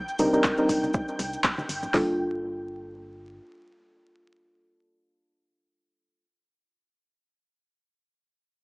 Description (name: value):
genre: deep house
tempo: 120 BPM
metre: 4/4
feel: swing 55% on 16ths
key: G minor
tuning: A4 = 441 Hz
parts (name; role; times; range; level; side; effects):
- deep mellow chord stab; stabs; 0.0-6.3 s; G3 to Bb4; -26 LUFS; equal; chorus, cassette tape, sidechain pumping, analog delay
- analog string pad; texture; 0.0-2.0 s; G5 to G6; -36 LUFS; equal; ensemble chorus
- cabasa; percussion; 0.1-1.9 s; none; -44 LUFS; equal; none
- organ-like FM bass; bass; 0.2-3.4 s; G1 to C2; -41 LUFS; equal; tube saturation, sidechain pumping
- deep house drum kit; drums; 0.2-1.8 s; handclaps, hi-hat; -29 LUFS; equal; vintage 12-bit sampler grit
- congas; percussion; 0.2-1.9 s; none; -39 LUFS; equal; none
- deep house drum kit; drums; 0.4-2.1 s; hi-hat, kick drum, snare drum; -27 LUFS; equal; vintage 12-bit sampler grit
room: moderate lush hall reverb, RT60 2.5 s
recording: vinyl crackle, small speaker sound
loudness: -23 LUFS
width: side -37 dB against mid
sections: 0.0-1.9 A section; 1.9-5.9 B section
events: none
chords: 0.0 Cm9; 1.9 Gm9